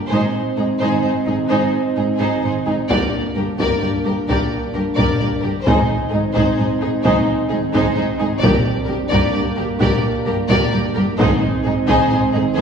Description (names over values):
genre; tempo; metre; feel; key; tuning
cinematic, epic orchestral film score; 87 BPM (dotted quarters); 12/8; straight; unclear; A4 = 440 Hz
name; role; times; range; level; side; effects
dark French horn section; sustained chords; 0.0-12.6 s; Bb3 to Eb4; -21 LUFS; equal; none
warm symphonic violin section; melody; 0.1-12.6 s; Ab4 to D5; -25 LUFS; left 1 dB; none
warm symphonic violin section; second line; 0.1-12.6 s; Eb4 to Bb4; -25 LUFS; left 3 dB; none
warm symphonic viola section; accompaniment; 0.1-12.6 s; Eb4 to G4; -25 LUFS; right 2 dB; none
warm symphonic cello section; bass; 0.1-12.6 s; G2 to Ab2; -24 LUFS; right 1 dB; none
warm symphonic double bass section; bass; 0.1-12.6 s; G1 to Ab1; -25 LUFS; right 2 dB; none
taiko ensemble; drums; 2.9-12.6 s; none; -22 LUFS; equal; none
room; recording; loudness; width
wet scoring stage reverb, RT60 1.5 s; recorded in a church or concert hall, small room ambience; -15 LUFS; side -6 dB against mid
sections
0.0-12.6 A section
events
none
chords
0.1 Ab; 2.9 Gm; 5.7 Ab; 8.4 Gm; 11.2 Ab